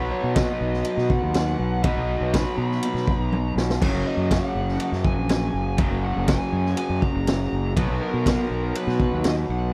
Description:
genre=classic rock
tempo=122 BPM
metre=4/4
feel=straight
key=unclear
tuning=A4 = 437 Hz
part: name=raw garage guitar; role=riff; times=0.0-9.7 s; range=F#2 to B3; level=-29 LUFS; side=equal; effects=overdrive
part: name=fuzz fingered electric bass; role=bass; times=0.0-9.7 s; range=F#1 to B2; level=-28 LUFS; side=equal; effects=overdrive
part: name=bluesy overdriven lead guitar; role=melody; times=0.1-9.7 s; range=A#4 to B5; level=-34 LUFS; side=equal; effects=distortion
part: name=raw garage drum kit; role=drums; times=0.4-9.4 s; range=crash cymbal, kick drum, ride cymbal, snare drum, toms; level=-27 LUFS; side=equal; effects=none
room=little or no reverb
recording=dry, close 1970s-style studio recording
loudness=-23 LUFS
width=mono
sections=0.0-9.7 A section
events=drum fill 3.3-3.8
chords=0.0 B; 3.8 F#5; 7.8 B

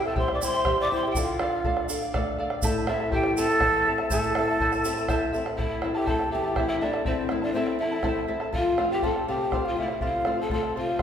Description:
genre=andean folk, Andean ensemble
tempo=81 BPM (dotted quarters)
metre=6/8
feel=straight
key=A minor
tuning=A4 = 439 Hz
part: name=mellow large quena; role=melody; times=0.0-11.0 s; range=E4 to A5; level=-28 LUFS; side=right 1 dB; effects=none
part: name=breathy mellow pan flute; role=second line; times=0.0-11.0 s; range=C4 to D6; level=-30 LUFS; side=left 2 dB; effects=none
part: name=charango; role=accompaniment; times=0.0-11.0 s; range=E4 to A5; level=-30 LUFS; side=right 1 dB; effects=none
part: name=flamenco guitar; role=accompaniment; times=0.0-11.0 s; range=E2 to F4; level=-31 LUFS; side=left 2 dB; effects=none
part: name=bombo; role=percussion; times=0.0-11.0 s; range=none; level=-31 LUFS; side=equal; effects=none
part: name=tube shaker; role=percussion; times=0.4-5.4 s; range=none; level=-36 LUFS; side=right 5 dB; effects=none
room=wet recital hall reverb, RT60 1.4 s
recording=recorded in a church or concert hall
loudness=-23 LUFS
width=side -8 dB against mid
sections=0.0-5.6 A section; 5.6-11.0 B section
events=none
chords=0.0 C; 1.2 Dm; 2.6 Am; 8.5 F

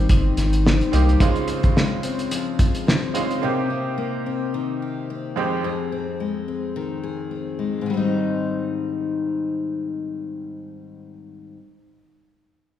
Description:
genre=indie pop, bedroom pop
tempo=108 BPM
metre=4/4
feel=swing 55% on 16ths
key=Ab major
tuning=A4 = 438 Hz
part: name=bright upright piano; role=accompaniment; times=0.0-5.7 s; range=F2 to G4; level=-27 LUFS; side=right 5 dB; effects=none
part: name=picked steel-string acoustic guitar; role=accompaniment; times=0.0-11.6 s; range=F2 to Ab4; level=-25 LUFS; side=left 5 dB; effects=warbly pitch drift
part: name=round analog bass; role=bass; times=0.0-1.2 s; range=G1 to C2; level=-19 LUFS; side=equal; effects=none
part: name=cloth-damped thuddy drum kit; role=drums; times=0.1-3.4 s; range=hi-hat, kick drum, snare drum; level=-20 LUFS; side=equal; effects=none
room=moderate scoring stage reverb, RT60 2.0 s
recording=recorded in a church or concert hall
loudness=-20 LUFS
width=side -11 dB against mid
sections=0.0-7.9 A section; 7.9-10.1 B section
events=none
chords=0.0 Abmaj7; 1.2 Dbmaj7; 3.4 Cm7; 5.4 Fm7; 7.9 Abmaj7

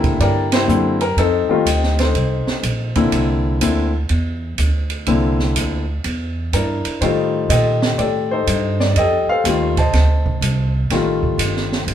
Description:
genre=jazz piano trio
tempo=123 BPM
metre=4/4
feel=swing 66% on 8ths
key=unclear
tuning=A4 = 439 Hz
part: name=warm baby grand piano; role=melody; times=0.0-11.9 s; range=D3 to A5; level=-18 LUFS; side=left 3 dB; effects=none
part: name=upright bass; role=bass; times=0.0-11.9 s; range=G1 to Bb2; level=-19 LUFS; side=right 1 dB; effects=none
part: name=open jazz drum kit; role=drums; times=0.0-11.9 s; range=hi-hat, kick drum, ride cymbal, snare drum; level=-23 LUFS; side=right 3 dB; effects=none
room=wet studio reverb, RT60 0.6 s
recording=band playing live in one room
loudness=-15 LUFS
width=side -10 dB against mid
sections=0.0-11.9 A section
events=band accent 0.4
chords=0.0 C9; 1.2 F9; 3.1 C9; 7.0 F9

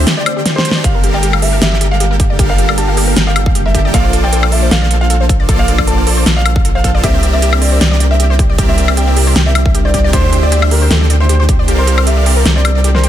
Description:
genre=future bass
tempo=155 BPM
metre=4/4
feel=swing 54% on 16ths, half-time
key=unclear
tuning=A4 = 443 Hz
part: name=ethereal airy pad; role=sustained chords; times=0.0-13.1 s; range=C3 to A5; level=-23 LUFS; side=equal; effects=ensemble chorus, built-in reverb, sidechain pumping
part: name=supersaw chords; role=riff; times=0.0-13.1 s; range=D3 to G5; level=-19 LUFS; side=equal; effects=sidechain pumping
part: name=saturated sub bass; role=bass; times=0.0-13.1 s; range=G1 to D2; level=-13 LUFS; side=equal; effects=sidechain pumping
part: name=wide unison pluck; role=arpeggios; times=0.1-13.1 s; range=G4 to F5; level=-23 LUFS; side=left 4 dB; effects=sidechain pumping, ping-pong delay
part: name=big-room dance drum kit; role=drums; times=0.1-13.1 s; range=hi-hat, snare drum, woodblock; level=-16 LUFS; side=equal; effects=none
part: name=warm concert grand piano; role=melody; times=0.2-13.1 s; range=A4 to A5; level=-20 LUFS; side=right 1 dB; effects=sidechain pumping, dub echo
part: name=electronic kick drum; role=drums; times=0.8-11.6 s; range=none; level=-13 LUFS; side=equal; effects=none
room=light reverb, digital ambience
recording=dense, heavily limited modern master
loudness=-9 LUFS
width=side -11 dB against mid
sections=0.0-13.1 A section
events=break 0.1-0.8; drum fill 0.5-0.8; kick drops out 11.7-13.1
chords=0.0 D9sus4; 0.8 Gm9; 3.9 Bbmaj9; 7.0 C9; 10.1 D9sus4; 11.7 C13sus4

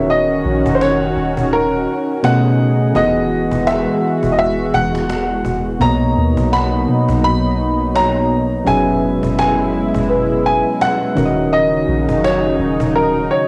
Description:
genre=contemporary R&B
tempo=84 BPM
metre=4/4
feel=swing 58% on 16ths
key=B major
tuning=A4 = 440 Hz
part: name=warm baby grand piano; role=melody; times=0.0-13.5 s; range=A#4 to B5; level=-21 LUFS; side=equal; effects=cassette tape
part: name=soft electric-piano-like synth keys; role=accompaniment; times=0.0-13.5 s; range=B2 to F#5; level=-21 LUFS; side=equal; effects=chorus, cassette tape
part: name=lush unison pad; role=sustained chords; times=0.0-13.5 s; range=B2 to F#4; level=-23 LUFS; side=equal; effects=chorus, cassette tape
part: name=soft 808-style bass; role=bass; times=0.0-13.3 s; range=D#1 to B2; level=-24 LUFS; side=equal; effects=none
part: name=cajon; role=drums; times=0.1-13.4 s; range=none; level=-28 LUFS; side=equal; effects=none
part: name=celesta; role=texture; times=1.5-11.5 s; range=B4 to A#5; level=-26 LUFS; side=equal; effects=cassette tape, tape echo
room=light reverb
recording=home recording on cassette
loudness=-16 LUFS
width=mono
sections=0.0-13.5 A section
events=none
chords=0.0 D#m7; 2.2 B13; 3.0 Emaj9; 5.8 Bmaj7; 8.7 F#9sus4; 11.2 D#m7

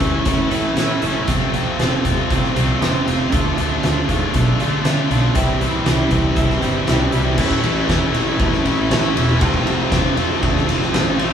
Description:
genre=quiet-loud alternative rock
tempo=118 BPM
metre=4/4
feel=straight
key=unclear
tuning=A4 = 436 Hz
part: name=twelve-string electric guitar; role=arpeggios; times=0.0-7.4 s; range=F2 to F4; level=-24 LUFS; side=right 4 dB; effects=tremolo, analog delay
part: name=heavy high-gain guitar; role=riff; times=0.0-11.3 s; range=A2 to F4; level=-21 LUFS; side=left 6 dB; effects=distortion
part: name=overdriven electric guitar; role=riff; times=0.0-11.3 s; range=A2 to F4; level=-23 LUFS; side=right 5 dB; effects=none
part: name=fuzz fingered electric bass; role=bass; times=0.0-11.3 s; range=E1 to D3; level=-22 LUFS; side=equal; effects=overdrive
part: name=oversized low-tuned drum kit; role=drums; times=0.0-11.3 s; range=crash cymbal, hi-hat, kick drum, ride cymbal, snare drum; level=-20 LUFS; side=equal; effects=none
room=moderate stone room reverb, RT60 1.1 s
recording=band playing live in one room, small room ambience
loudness=-15 LUFS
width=side -8 dB against mid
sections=0.0-7.4 A section; 7.4-11.3 B section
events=none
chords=0.0 A; 1.3 F; 3.3 Dm; 5.4 C; 7.4 A; 9.4 F

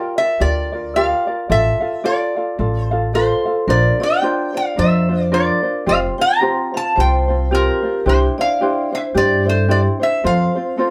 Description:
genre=Hawaiian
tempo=110 BPM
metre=4/4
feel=swing 58% on 8ths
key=F major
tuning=A4 = 440 Hz
part: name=lap resonator guitar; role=melody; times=0.0-10.9 s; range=Bb4 to Bb5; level=-21 LUFS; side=equal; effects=none
part: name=ukulele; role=accompaniment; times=0.0-10.9 s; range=C4 to F5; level=-23 LUFS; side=equal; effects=none
part: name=upright bass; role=bass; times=0.4-10.4 s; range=F1 to G2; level=-21 LUFS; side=equal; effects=none
part: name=vibraphone with medium hard mallets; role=second line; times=3.1-10.9 s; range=G4 to G5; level=-25 LUFS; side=equal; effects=none
room=moderate studio ambience, RT60 0.5 s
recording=band playing live in one room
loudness=-17 LUFS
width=mono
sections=0.0-10.9 A section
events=none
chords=0.0 Gm7; 1.5 Dm/A; 3.7 Bbadd9; 5.9 Fsus2; 8.1 Cadd9; 10.2 F

